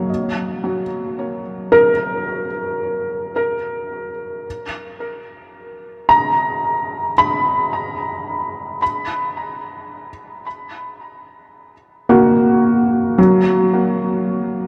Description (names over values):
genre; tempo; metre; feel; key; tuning
ambient; 55 BPM; 4/4; straight; unclear; A4 = 442 Hz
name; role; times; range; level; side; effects
felt-muted upright piano; solo; 0.0-14.7 s; F#3 to B5; -19 LUFS; equal; delay
room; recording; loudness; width
wet cathedral reverb, RT60 6.9 s; dark, warm production; -18 LUFS; mono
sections
0.0-14.7 A section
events
none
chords
0.1 N.C.; 8.8 F#; 13.2 N.C.